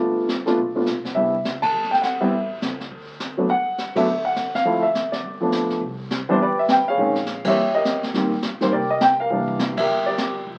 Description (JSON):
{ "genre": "jazz piano trio", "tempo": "206 BPM", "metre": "4/4", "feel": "swing 62% on 8ths", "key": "G major", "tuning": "A4 = 440 Hz", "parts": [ { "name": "warm baby grand piano", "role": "melody", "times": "0.0-10.4 s", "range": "Eb3 to A5", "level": "-22 LUFS", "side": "equal", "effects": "none" }, { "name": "upright bass", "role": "bass", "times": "0.0-10.6 s", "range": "F1 to Eb2", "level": "-42 LUFS", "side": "equal", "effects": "none" }, { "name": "jazz brush drum kit", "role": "drums", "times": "0.3-10.6 s", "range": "brushed snare drum, crash cymbal, hi-hat, kick drum, ride cymbal, snare drum", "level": "-30 LUFS", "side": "equal", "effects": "none" } ], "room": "wet club reverb, RT60 0.5 s", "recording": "very old 78 rpm record, vinyl crackle", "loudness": "-21 LUFS", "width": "mono", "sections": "0.0-5.8 A section; 5.8-10.6 B section", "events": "band accent 1.6, 3.9, 7.4, 9.7", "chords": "0.0 G7; 1.2 Cmaj7; 2.3 A5; 2.9 N.C.; 3.5 Gmaj7(no3); 4.7 Dm7; 5.2 G9; 5.8 Cmaj7sus2; 7.0 Bbm11; 7.6 Eb7; 8.1 Abmaj9; 9.3 C7" }